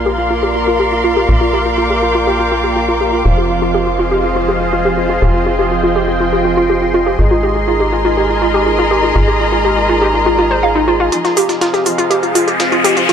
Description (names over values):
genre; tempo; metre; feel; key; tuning
melodic techno; 122 BPM; 4/4; straight; F dorian; A4 = 439 Hz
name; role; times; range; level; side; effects
lush unison pad; sustained chords; 0.0-13.1 s; C4 to C6; -20 LUFS; left 2 dB; chorus, phaser
analog synth brass; stabs; 0.0-13.1 s; F3 to Bb4; -19 LUFS; right 3 dB; chorus, tape echo
tight sequencer bass; bass; 0.0-11.1 s; F1 to Bb1; -19 LUFS; equal; none
dark chamber string section; texture; 0.0-13.1 s; F4 to D6; -19 LUFS; left 1 dB; none
warbly dusty pluck; arpeggios; 0.1-13.1 s; Eb4 to F5; -16 LUFS; equal; chorus, cassette tape, tape echo
dusty soul sampler-style drum kit; drums; 11.1-13.1 s; hi-hat, snare drum; -25 LUFS; equal; high-pass filter on hats, high-pass filter on snare, tape echo
electronic hi-hat; drums; 11.1-13.1 s; none; -21 LUFS; right 2 dB; low-pass filter on hats, low-pass filter on room
riser; sound effects; 11.9-13.1 s; none; -18 LUFS; left 2 dB; none
room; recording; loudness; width
moderate spring reverb, RT60 1.6 s; echo-heavy mix; -11 LUFS; side -8 dB against mid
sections
0.0-11.1 A section; 11.1-13.1 B section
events
filter sweep on synth arpeggio sound 0.0-11.1; build-up 11.1-13.1; filter sweep on analog polysynth 11.1-13.1; riser 11.9-13.1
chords
0.0 Bbadd9; 3.3 Fm7; 7.2 Abadd9; 11.1 Fm7